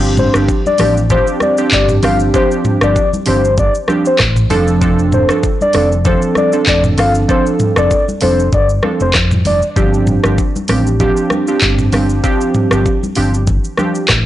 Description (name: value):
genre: afrobeats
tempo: 97 BPM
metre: 4/4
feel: swing 55% on 16ths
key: unclear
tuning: A4 = 440 Hz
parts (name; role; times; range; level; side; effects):
- glassy digital keys; accompaniment; 0.0-14.0 s; F3 to A4; -16 LUFS; right 2 dB; chorus
- hollow-body short-scale fingered electric bass; bass; 0.0-14.3 s; F1 to F2; -16 LUFS; equal; none
- afro-pop drum kit; drums; 0.0-14.3 s; handclaps, hi-hat, kick drum, rim click, shaker, toms; -16 LUFS; equal; overdrive
- soft octave-layered synth lead; melody; 0.2-9.6 s; C5 to F5; -16 LUFS; left 2 dB; chorus, digital delay
- congas; percussion; 0.2-13.9 s; none; -24 LUFS; left 3 dB; none
room: digital ambience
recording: blown-out, overdriven recording, overdrive, nothing above 10.5 kHz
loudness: -11 LUFS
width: side -13 dB against mid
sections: 0.0-14.3 A section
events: none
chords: 0.0 G7sus4; 4.5 Dm7/F; 9.8 G7sus4